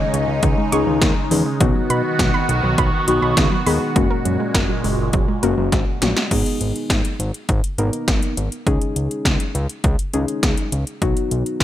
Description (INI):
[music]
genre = synth-pop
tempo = 102 BPM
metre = 4/4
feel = straight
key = G# minor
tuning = A4 = 440 Hz
[part]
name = phased analog pad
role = sustained chords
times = 0.0-6.3 s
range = A#2 to F#4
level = -22 LUFS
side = right 1 dB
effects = phaser, chorus
[part]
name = soft round pluck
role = arpeggios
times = 0.0-6.2 s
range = D#3 to C#6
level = -26 LUFS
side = right 5 dB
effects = chorus, tape echo
[part]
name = fat analog bass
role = bass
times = 0.1-11.6 s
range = F#1 to B2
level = -22 LUFS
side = equal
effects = none
[part]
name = 80s electronic pad drums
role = drums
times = 0.1-11.6 s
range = crash cymbal, hi-hat, kick drum, snare drum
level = -20 LUFS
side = equal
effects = overdrive
[part]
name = muted felt-like synth keys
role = accompaniment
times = 0.7-11.6 s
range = A#3 to A#4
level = -23 LUFS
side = left 3 dB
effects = chorus
[sound]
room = light reverb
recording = none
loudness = -17 LUFS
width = side -12 dB against mid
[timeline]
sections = 0.0-6.3 A section; 6.3-11.6 B section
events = drum fill 5.7-6.3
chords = 0.0 C#sus2; 1.6 B; 4.0 F#add9; 6.3 G#m; 8.7 C#sus2; 11.0 B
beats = 0.43 1.02 | 1.61 2.19 2.78 3.37 | 3.96 4.55 5.13 5.72 | 6.31 6.90 7.49 8.08 | 8.66 9.25 9.84 10.43 | 11.02 11.61